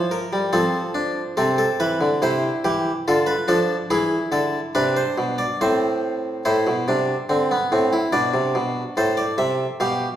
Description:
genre	classical, baroque-style 3-part fugue for harpsichord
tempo	71 BPM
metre	3/4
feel	straight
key	unclear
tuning	A4 = 440 Hz
part	harpsichord	solo	0.0-10.1 s	A2 to F5	-19 LUFS	equal	none
room	wet recital hall reverb, RT60 1.4 s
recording	heard from further back in the room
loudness	-19 LUFS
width	side -11 dB against mid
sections	0.0-6.4 A section; 6.4-10.2 B section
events	none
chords	0.0 A7(no3); 0.5 Dm/F; 1.4 Am/C; 3.1 Dm; 3.9 E7; 5.6 Am; 8.1 Bm; 9.0 F/A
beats	0.53 | 1.38 2.22 3.07 | 3.91 4.75 5.60 | 6.45 7.30 8.14 | 8.98 9.82

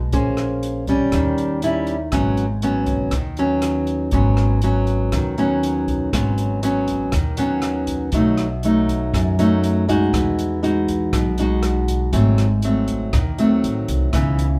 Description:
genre	bossa nova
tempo	120 BPM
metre	4/4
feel	straight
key	G# minor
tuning	A4 = 440 Hz
part	nylon-string guitar	accompaniment	0.0-14.6 s	F#2 to B#4	-22 LUFS	equal	none
part	upright bass	bass	0.0-14.6 s	G#1 to F#2	-24 LUFS	equal	none
part	open jazz drum kit	drums	0.1-14.5 s	hi-hat, kick drum, rim click	-29 LUFS	equal	none
room	light reverb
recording	band playing live in one room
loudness	-19 LUFS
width	mono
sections	0.0-6.1 A section; 6.1-14.6 B section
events	none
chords	0.1 A#m9; 1.1 D#7b9; 2.1 G#m7; 8.1 B7; 10.1 Emaj9; 12.1 G#7b9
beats	| 0.13 0.63 1.13 1.63 | 2.13 2.63 3.13 3.63 | 4.13 4.63 5.13 5.63 | 6.13 6.63 7.13 7.63 | 8.13 8.63 9.13 9.63 | 10.13 10.63 11.13 11.63 | 12.13 12.63 13.13 13.63 | 14.13

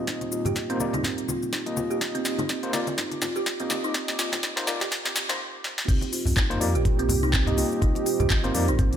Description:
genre	afro house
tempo	124 BPM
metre	4/4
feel	swing 57% on 16ths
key	C minor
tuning	A4 = 440 Hz
part	dark analog pad	sustained chords	0.0-9.0 s	Bb3 to D6	-33 LUFS	right 3 dB	chorus, sidechain pumping
part	overdriven tine electric piano	stabs	0.0-8.7 s	Bb3 to Eb5	-32 LUFS	left 3 dB	medium tremolo, sidechain pumping, low-pass filter, digital delay
part	kalimba	arpeggios	0.1-8.9 s	C4 to G4	-29 LUFS	right 3 dB	sidechain pumping, digital delay
part	afro-pop drum kit	drums	0.1-9.0 s	crash cymbal, handclaps, hi-hat, shaker, snare drum, toms	-28 LUFS	left 1 dB	high-pass filter on perc, small room ambience, high-pass filter on snare, high-pass filter on hats, high-pass filter on toms, high-pass filter on cymbals
part	electronic kick drum	drums	0.1-8.9 s	none	-25 LUFS	equal	high-pass filter on kick, small room ambience
part	congas	percussion	0.2-9.0 s	none	-32 LUFS	left 2 dB	none
part	round analog bass	bass	5.9-9.0 s	G1 to F2	-27 LUFS	equal	sidechain pumping
room	moderate recital hall reverb, RT60 1.4 s, digital ambience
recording	high-pass filter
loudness	-23 LUFS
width	side -9 dB against mid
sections	0.0-5.9 A section; 5.9-9.0 B section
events	build-up 0.0-5.9; drum fill 0.0-5.4, 5.6; filter sweep on tine electric piano 0.0-5.9; filter sweep on analog synth pad 0.0-5.9; filter sweep 0.0-5.9; stop 5.4-5.9; drop 5.9-9.0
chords	0.0 Cm7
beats	| 0.08 0.56 1.04 1.53 | 2.01 2.50 2.98 3.46 | 3.95 4.43 4.92 5.40 | 5.88 6.37 6.85 7.33 | 7.82 8.30 8.79

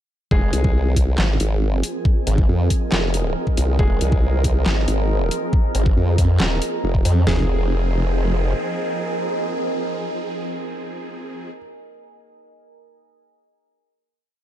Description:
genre	heavy wobble dubstep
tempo	138 BPM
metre	4/4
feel	half-time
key	F minor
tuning	A4 = 440 Hz
part	clear baby grand piano	melody	0.3-0.9, 3.8-4.4, 7.3-11.6 s	Ab3 to Ab4	-31 LUFS	left 3 dB	digital delay
part	supersaw chords	sustained chords	0.3-11.5 s	F3 to Ab4	-27 LUFS	right 2 dB	phaser, sidechain pumping, low-pass filter
part	formant-sweep wobble bass	bass	0.3-8.5 s	Eb1 to F2	-18 LUFS	equal	chorus, overdrive
part	dubstep drum kit	drums	0.3-7.4 s	kick drum, snare drum, toms	-19 LUFS	equal	overdrive
part	deep dark ambient pad	texture	1.6-11.5 s	Bb4 to Bb5	-29 LUFS	right 2 dB	chorus, built-in reverb, sidechain pumping
part	formant-sweep wobble bass	bass	0.5-7.0 s	F1 to F2	-19 LUFS	equal	chorus, overdrive
part	dubstep drum kit	drums	0.5-7.1 s	handclaps, hi-hat, snare drum	-24 LUFS	left 1 dB	overdrive
room	little or no reverb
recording	dark, warm production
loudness	-17 LUFS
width	side -12 dB against mid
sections	0.3-7.3 drop; 7.3-10.7 final chord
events	drop 0.3-7.3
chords	0.3 Fm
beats	| 0.31 0.75 1.18 1.62 | 2.05 2.49 2.92 3.36 | 3.79 4.23 4.66 5.09 | 5.53 5.96 6.40 6.83 | 7.27 7.70 8.14 8.57 | 9.01 9.44 9.88 10.31

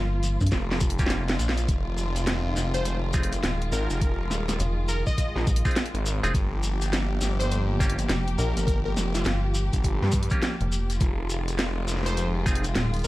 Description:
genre	glitch hop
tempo	103 BPM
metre	4/4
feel	swing 62% on 16ths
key	F minor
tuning	A4 = 436 Hz
part	plucky unison lead	melody	0.0-13.1 s	F4 to Eb5	-34 LUFS	left 1 dB	phaser, cassette tape, ping-pong delay
part	dark chamber string section	sustained chords	0.0-13.1 s	Eb3 to G4	-33 LUFS	equal	sidechain pumping
part	rubbery square bass	bass	0.0-13.0 s	Eb1 to G2	-25 LUFS	equal	tube saturation
part	drum and bass drum kit	drums	0.2-13.1 s	hi-hat, snare drum	-29 LUFS	equal	none
part	shekere	percussion	0.2-13.1 s	none	-37 LUFS	left 2 dB	none
part	electronic kick drum	drums	0.4-12.6 s	none	-25 LUFS	equal	none
part	phased detuned saw bass	bass	0.5-13.1 s	Eb1 to G2	-27 LUFS	equal	phaser
part	clav	stabs	1.0-12.7 s	Bb3 to Ab4	-33 LUFS	right 1 dB	sidechain pumping, ping-pong delay
room	little or no reverb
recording	vinyl crackle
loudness	-23 LUFS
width	side -17 dB against mid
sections	0.0-13.1 A section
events	drum fill 0.5-1.7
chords	0.0 Gm7b5; 1.7 Fm7; 6.3 Gm7; 11.0 Fm7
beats	0.52 1.10 | 1.68 2.27 2.85 3.43 | 4.01 4.60 5.18 5.76 | 6.34 6.93 7.51 8.09 | 8.68 9.26 9.84 10.42 | 11.01 11.59 12.17 12.75

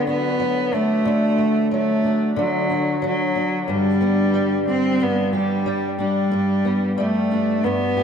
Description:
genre	pop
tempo	91 BPM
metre	4/4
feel	straight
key	G major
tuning	A4 = 440 Hz
part	clear cello	melody	0.0-8.0 s	F#3 to C4	-20 LUFS	equal	ping-pong delay
part	fingerpicked swing-style acoustic guitar	accompaniment	0.0-8.0 s	G2 to G4	-22 LUFS	left 1 dB	double-tracked left and right
room	moderate plate reverb, RT60 2.8 s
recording	dreamy mix soaked in reverb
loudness	-18 LUFS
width	side -7 dB against mid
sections	0.0-8.0 A section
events	none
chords	0.0 D; 3.7 G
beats	0.39 | 1.05 1.71 2.37 3.02 | 3.68 4.34 5.00 5.66 | 6.32 6.98 7.64

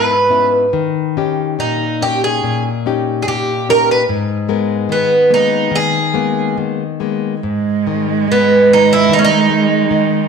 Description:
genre	fado-style ballad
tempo	72 BPM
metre	2/4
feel	uneven beats, rubato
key	G# harmonic minor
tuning	A4 = 440 Hz
part	picked twelve-string acoustic guitar	melody	0.0-10.3 s	B3 to B4	-13 LUFS	right 2 dB	none
part	nylon-string guitar	accompaniment	0.0-10.3 s	G#2 to G5	-18 LUFS	left 8 dB	none
part	rich cello	second line	7.4-10.3 s	G#3	-15 LUFS	right 8 dB	slapback echo
room	wet echo chamber reverb, RT60 1.4 s, studio reverb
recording	1960s-style stereo with parts hard left and right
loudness	-12 LUFS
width	side -6 dB against mid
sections	0.0-7.4 A section; 7.4-10.3 A section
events	none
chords	0.0 C#m7; 0.7 D#7; 4.1 G#madd9; 7.4 G#5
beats	| 0.75 1.60 | 2.44 3.27 | 4.09 4.90 | 5.72 6.57 | 7.43 8.27 | 9.10 9.91

